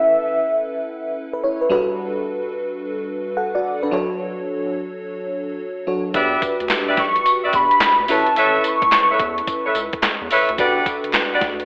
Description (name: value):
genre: R&B, new jack swing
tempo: 108 BPM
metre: 4/4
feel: swing 65% on 16ths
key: unclear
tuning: A4 = 438 Hz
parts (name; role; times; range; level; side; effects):
- warm velvety synth lead; melody; 0.0-1.0, 7.0-9.7 s; E5 to C#6; -20 LUFS; equal; chorus, diffuse ambient delay
- FM electric piano with soft pad layer; accompaniment; 0.0-11.7 s; F#3 to F#5; -26 LUFS; equal; chorus, tremolo
- warm horn section; stabs; 6.1-11.5 s; G4 to F#5; -22 LUFS; equal; diffuse ambient delay
- round analog bass; bass; 6.1-11.6 s; E1 to E2; -38 LUFS; equal; none
- clean 12-bit digital drum machine; drums; 6.1-11.7 s; handclaps, hi-hat, kick drum, snare drum, tambourine; -25 LUFS; equal; overdrive
- group handclap; percussion; 6.7-11.3 s; none; barely audible; none; none
room: wet plate reverb, RT60 1.5 s, digital ambience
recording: dreamy mix soaked in reverb, telephone sound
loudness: -20 LUFS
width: mono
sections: 0.0-11.7 A section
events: none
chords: 0.0 Aadd9; 1.7 Gmaj7; 3.9 Bm9/F# (rootless); 6.1 Em7; 8.1 Aadd9; 10.6 Gmaj7